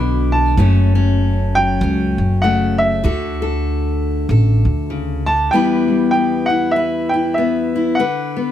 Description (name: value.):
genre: acoustic folk duo or small band.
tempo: 97 BPM.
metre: 4/4.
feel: swing 59% on 8ths.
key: E dorian.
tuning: A4 = 440 Hz.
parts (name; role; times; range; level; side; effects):
warm upright piano; melody; 0.0-8.5 s; E5 to B5; -20 LUFS; right 1 dB; plate reverb.
fingerpicked steel-string acoustic guitar; accompaniment; 0.0-8.5 s; E2 to B4; -18 LUFS; left 3 dB; none.
upright bass; bass; 0.0-5.5 s; F#1 to D2; -16 LUFS; equal; none.
room: light reverb.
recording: none.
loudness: -14 LUFS.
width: side -11 dB against mid.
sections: 0.0-5.5 A section; 5.5-8.5 A section.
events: none.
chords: 0.0 Bm; 0.6 F#m; 3.0 Dadd9; 5.5 Em; 8.0 Bm/D.